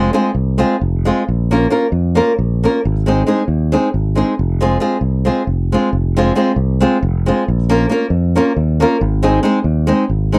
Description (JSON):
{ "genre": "balkan folk, Balkan wedding band", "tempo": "271 BPM (eighths)", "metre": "7/8", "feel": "straight", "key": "F minor", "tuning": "A4 = 439 Hz", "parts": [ { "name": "nylon-string guitar", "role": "accompaniment", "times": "0.0-10.4 s", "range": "Ab3 to Bb4", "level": "-16 LUFS", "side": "equal", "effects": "none" }, { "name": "fingered electric bass", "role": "bass", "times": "0.0-10.4 s", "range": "F1 to F2", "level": "-18 LUFS", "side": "equal", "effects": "none" } ], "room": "light reverb", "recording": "dry, close 1970s-style studio recording", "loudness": "-15 LUFS", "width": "mono", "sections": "0.0-5.9 A section; 5.9-10.4 A section", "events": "none", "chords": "0.0 Fm; 1.3 Bbm; 2.8 Ab; 4.4 Fm; 7.5 Bbm; 9.0 Ab" }